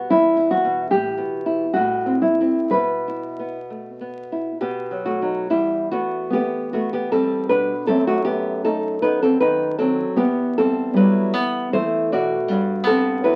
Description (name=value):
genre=romantic duo for nylon-string guitar and classical guitar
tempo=58-82 BPM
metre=3/4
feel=rubato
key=E minor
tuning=A4 = 440 Hz
part: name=nylon-string guitar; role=melody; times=0.0-13.4 s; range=G3 to B4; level=-22 LUFS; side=equal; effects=none
part: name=nylon-string guitar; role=accompaniment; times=0.0-13.4 s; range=E2 to D5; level=-23 LUFS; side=equal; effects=none
room=moderate small room reverb, RT60 0.5 s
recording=very old 78 rpm record, vinyl crackle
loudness=-21 LUFS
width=mono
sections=0.0-5.5 A section; 5.5-13.4 A section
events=none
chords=0.1 Em; 1.8 Am; 2.7 E5/B; 4.6 B; 5.5 Em; 7.9 B7/F#; 10.2 Em; 12.5 Em/G